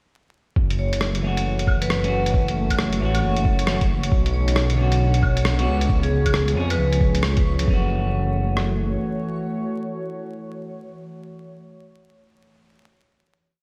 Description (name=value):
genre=future garage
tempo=135 BPM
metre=4/4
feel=swing 63% on 16ths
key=F# minor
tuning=A4 = 441 Hz
part: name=warbly tape-like pad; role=sustained chords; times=1.5-11.4 s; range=D3 to C#5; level=-32 LUFS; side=equal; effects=chorus, built-in reverb, phaser, sidechain pumping
part: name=dark detuned saw bass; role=bass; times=0.6-9.0 s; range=F#1 to E#2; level=-24 LUFS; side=equal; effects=sidechain pumping
part: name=lo-fi sampler-style drum kit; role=drums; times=0.6-8.7 s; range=kick drum, rim click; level=-23 LUFS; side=equal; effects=none
part: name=backwards swelling texture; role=texture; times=1.6-7.7 s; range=C#4 to C#5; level=-38 LUFS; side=equal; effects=built-in reverb
part: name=lo-fi sampler-style drum kit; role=drums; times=0.7-7.7 s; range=claves, hi-hat, rim click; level=-29 LUFS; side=equal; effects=none
part: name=vibraphone with medium hard mallets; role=melody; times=0.8-7.2 s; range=G#4 to C#5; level=-32 LUFS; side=equal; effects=digital delay
part: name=semi-hollow electric guitar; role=accompaniment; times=1.2-11.2 s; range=D3 to G#4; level=-32 LUFS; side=equal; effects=vintage 12-bit sampler grit, sidechain pumping, digital delay
room=light reverb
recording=played on a big sound system in a bare room, stone room reverb, vinyl crackle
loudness=-21 LUFS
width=mono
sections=0.6-7.7 groove; 7.7-11.2 final chord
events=none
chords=0.6 F#m7; 4.1 Bmadd9; 5.9 C#7; 7.7 F#m7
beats=| 0.56 1.01 1.45 1.90 | 2.34 2.79 3.23 3.67 | 4.12 4.56 5.01 5.45 | 5.90 6.34 6.79 7.23 | 7.67 8.12 8.56 9.01 | 9.45 9.90 10.34 10.79